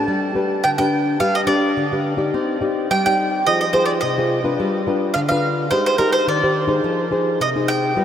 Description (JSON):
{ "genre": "samba", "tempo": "106 BPM", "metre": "4/4", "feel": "straight", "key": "unclear", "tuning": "A4 = 435 Hz", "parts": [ { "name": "bowl-back mandolin", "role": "melody", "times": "0.0-8.0 s", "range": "Bb4 to G5", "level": "-20 LUFS", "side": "right 2 dB", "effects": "none" }, { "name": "nylon-string guitar", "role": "accompaniment", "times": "0.0-8.0 s", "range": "C3 to D5", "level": "-19 LUFS", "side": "left 1 dB", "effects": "none" } ], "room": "wet huge ambient reverb, RT60 7.5 s", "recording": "in a vast, echoing space", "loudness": "-16 LUFS", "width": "side -9 dB against mid", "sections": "0.0-8.0 A section", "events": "none", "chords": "0.1 G; 2.3 Cmadd9; 3.5 Fm; 4.6 G7; 5.7 Abmaj7; 6.9 Fm7" }